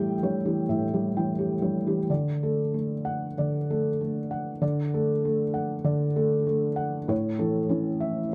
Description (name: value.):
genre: neoclassical minimalist piano.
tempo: 85-100 BPM.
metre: 4/4.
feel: rubato.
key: D major.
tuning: A4 = 440 Hz.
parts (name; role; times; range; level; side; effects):
felt-muted upright piano; solo; 0.0-8.3 s; A2 to G5; -27 LUFS; equal; none.
room: little or no reverb.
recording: dry, close 1970s-style studio recording.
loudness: -27 LUFS.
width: mono.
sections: 0.0-2.1 A section; 2.1-8.3 B section.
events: none.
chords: 0.0 A7; 2.1 D; 7.1 A.